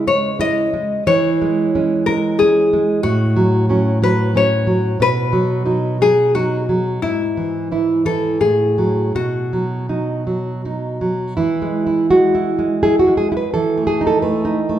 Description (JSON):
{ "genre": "romantic duo for nylon-string guitar and classical guitar", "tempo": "79-93 BPM", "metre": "3/4", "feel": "rubato", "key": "E major from 3.0 s", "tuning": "A4 = 440 Hz", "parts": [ { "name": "nylon-string guitar", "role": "melody", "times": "0.0-10.6 s", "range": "E4 to D#5", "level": "-18 LUFS", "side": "left 3 dB", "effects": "none" }, { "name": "nylon-string guitar", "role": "accompaniment", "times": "0.0-14.8 s", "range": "G#2 to B4", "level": "-16 LUFS", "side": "right 2 dB", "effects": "none" } ], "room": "wet recital hall reverb, RT60 1.8 s", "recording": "recorded in a church or concert hall", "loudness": "-15 LUFS", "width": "side -11 dB against mid", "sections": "0.0-11.4 A section; 11.4-14.8 B section", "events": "none", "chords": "0.0 C#m; 1.1 C#m/E; 3.0 F#m/A; 5.0 B; 7.0 E/G#; 8.4 F#m/A; 9.2 B; 11.4 E; 13.5 B7/E", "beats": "0.40 | 1.06 1.74 2.39 | 3.04 3.70 4.36 | 5.01 5.67 6.35 | 7.03 7.71 8.41 | 9.16 9.91 10.66 | 11.39 12.12 12.83 | 13.53 14.22" }